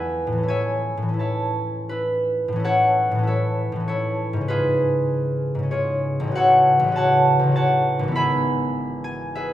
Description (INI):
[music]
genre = classical, solo harp piece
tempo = 78-104 BPM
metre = 3/4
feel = rubato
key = A major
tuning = A4 = 440 Hz
[part]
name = concert harp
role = solo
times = 0.0-9.5 s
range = G#1 to B5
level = -19 LUFS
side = equal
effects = none
[sound]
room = wet recital hall reverb, RT60 1.5 s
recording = recorded in a church or concert hall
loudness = -19 LUFS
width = side -12 dB against mid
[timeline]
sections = 0.0-2.6 A section; 2.6-9.5 A section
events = none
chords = 0.0 E; 0.5 A; 4.5 C#7/G#; 6.4 F#m/A; 8.1 E/G#